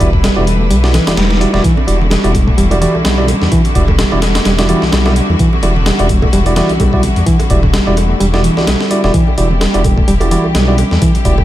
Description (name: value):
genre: breakbeat, breaks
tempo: 128 BPM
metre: 4/4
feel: swing 56% on 16ths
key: E minor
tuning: A4 = 442 Hz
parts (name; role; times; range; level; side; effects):
- bright symphonic string section; sustained chords; 0.0-11.4 s; D3 to B4; -21 LUFS; left 1 dB; sidechain pumping
- tine electric piano; stabs; 0.0-11.3 s; G3 to D5; -19 LUFS; right 2 dB; ping-pong delay
- dark detuned saw bass; bass; 0.0-11.4 s; E1 to E2; -14 LUFS; equal; none
- breakbeat sampler-style drum kit; drums; 0.0-11.4 s; hi-hat, kick drum, snare drum; -15 LUFS; equal; none
- reed electric piano; riff; 0.2-11.1 s; E3 to A3; -16 LUFS; equal; ping-pong delay
- congas and bongos; percussion; 1.8-11.4 s; none; -24 LUFS; right 4 dB; none
room: little or no reverb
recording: none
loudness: -9 LUFS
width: side -14 dB against mid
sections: 0.0-11.4 A section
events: none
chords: 0.0 Em9